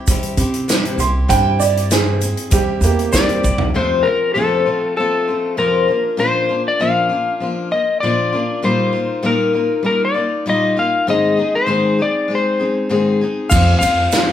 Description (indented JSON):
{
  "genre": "folk rock and heartland rock",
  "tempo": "98 BPM",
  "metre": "4/4",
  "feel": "straight",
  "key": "unclear",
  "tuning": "A4 = 440 Hz",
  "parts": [
    { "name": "picked steel-string acoustic guitar", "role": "accompaniment", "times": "0.0-14.3 s", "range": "F2 to Ab4", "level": "-19 LUFS", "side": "left 2 dB", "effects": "none" },
    { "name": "natural country drum kit", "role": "drums", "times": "0.1-3.7, 13.5-14.3 s", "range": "crash cymbal, hi-hat, kick drum, ride cymbal, snare drum, toms", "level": "-18 LUFS", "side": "right 1 dB", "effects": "none" },
    { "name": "egg shaker", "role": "percussion", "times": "0.1-3.6, 13.5-14.3 s", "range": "none", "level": "-28 LUFS", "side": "right 9 dB", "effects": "none" },
    { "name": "upright bass", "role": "bass", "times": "0.4-3.7, 13.5-14.1 s", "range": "C2 to C3", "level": "-18 LUFS", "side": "right 1 dB", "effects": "none" },
    { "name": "warm upright piano", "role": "second line", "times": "1.0-3.4 s", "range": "Bb3 to C6", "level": "-19 LUFS", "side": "right 8 dB", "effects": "none" },
    { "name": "electric slide guitar", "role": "melody", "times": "3.1-14.3 s", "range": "A4 to F5", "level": "-17 LUFS", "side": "left 3 dB", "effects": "none" }
  ],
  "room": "moderate large studio reverb, RT60 0.8 s",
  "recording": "band playing live in one room",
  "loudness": "-14 LUFS",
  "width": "side -10 dB against mid",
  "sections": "0.0-3.7 A section; 3.7-14.3 B section",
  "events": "upright piano solo 0.0-3.7; drum fill 3.4-3.7",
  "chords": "0.0 C; 3.7 F; 5.9 Bb; 8.6 Ebadd9/Bb; 11.1 Ab; 13.5 F"
}